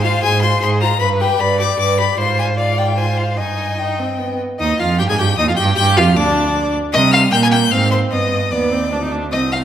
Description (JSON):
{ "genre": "quick classical-period movement for string quartet", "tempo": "152 BPM", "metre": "3/4", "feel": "straight", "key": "unclear", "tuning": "A4 = 441 Hz", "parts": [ { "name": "bright violin", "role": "melody", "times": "0.0-9.6 s", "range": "F5 to Ab6", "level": "-20 LUFS", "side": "left 8 dB", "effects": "none" }, { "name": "rich violin", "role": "second line", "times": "0.0-9.6 s", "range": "B4 to Ab5", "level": "-21 LUFS", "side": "left 2 dB", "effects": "none" }, { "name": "clear viola", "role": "accompaniment", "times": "0.0-9.6 s", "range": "G3 to B4", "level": "-20 LUFS", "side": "right 2 dB", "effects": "none" }, { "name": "clear cello", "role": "bass", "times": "0.0-9.6 s", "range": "C2 to C3", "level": "-18 LUFS", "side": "right 3 dB", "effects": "none" } ], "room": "wet recital hall reverb, RT60 1.8 s", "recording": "none", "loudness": "-14 LUFS", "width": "side -10 dB against mid", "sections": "0.0-4.6 A section; 4.6-9.6 B section", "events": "none", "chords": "0.0 Fm/Ab; 1.0 G; 2.2 Fm/Ab; 3.4 Cm/G; 4.2 G; 4.6 Ebadd9; 5.8 G5; 6.9 C5; 7.7 Fm/Ab; 8.1 G" }